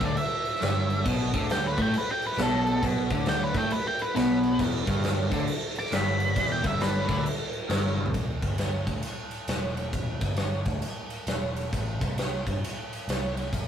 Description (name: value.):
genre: blues rock power trio and southern rock.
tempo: 135 BPM.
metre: 4/4.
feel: swing 63% on 8ths.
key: unclear.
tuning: A4 = 440 Hz.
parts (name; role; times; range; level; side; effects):
octave-fuzz lead guitar; melody; 0.0-7.2 s; A4 to D6; -29 LUFS; right 1 dB; distortion.
crunchy overdriven guitar; riff; 0.0-8.1 s; E2 to A3; -28 LUFS; left 1 dB; phaser.
vintage muted picked electric bass; bass; 0.0-13.7 s; E1 to A2; -31 LUFS; equal; none.
big rock drum kit; drums; 0.0-13.7 s; crash cymbal, kick drum, ride cymbal, snare drum, toms; -29 LUFS; equal; none.
room: moderate small room reverb, RT60 0.5 s.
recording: rough rehearsal-room recording, warm saturation.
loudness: -25 LUFS.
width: side -9 dB against mid.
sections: 0.0-8.1 A section; 8.1-13.7 B section.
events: lead electric guitar solo 0.0-8.1; drum fill 7.9.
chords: 0.0 E5; 1.1 Bm7; 4.6 Em7; 11.7 Am.